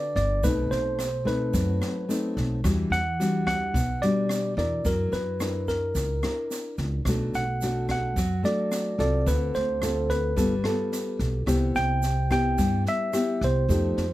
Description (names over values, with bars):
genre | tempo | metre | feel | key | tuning
bossa nova | 109 BPM | 4/4 | straight | unclear | A4 = 440 Hz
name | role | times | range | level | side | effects
tine electric piano | melody | 0.0-14.1 s | A#4 to G5 | -28 LUFS | right 1 dB | none
nylon-string guitar | accompaniment | 0.0-14.1 s | B2 to B4 | -28 LUFS | left 1 dB | none
upright bass | bass | 0.2-14.1 s | G1 to G2 | -28 LUFS | equal | none
open jazz drum kit | drums | 0.2-14.0 s | kick drum, rim click, snare drum | -32 LUFS | equal | none
tube shaker | percussion | 0.2-14.1 s | none | -43 LUFS | right 6 dB | none
room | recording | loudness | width
little or no reverb | close, detailed microphones | -23 LUFS | side -16 dB against mid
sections
0.0-14.1 A section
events
none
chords
0.4 B7b9; 2.6 Em9; 4.9 F#7b13; 7.1 Bm7; 9.3 Dm7; 10.4 G9; 11.5 Cmaj7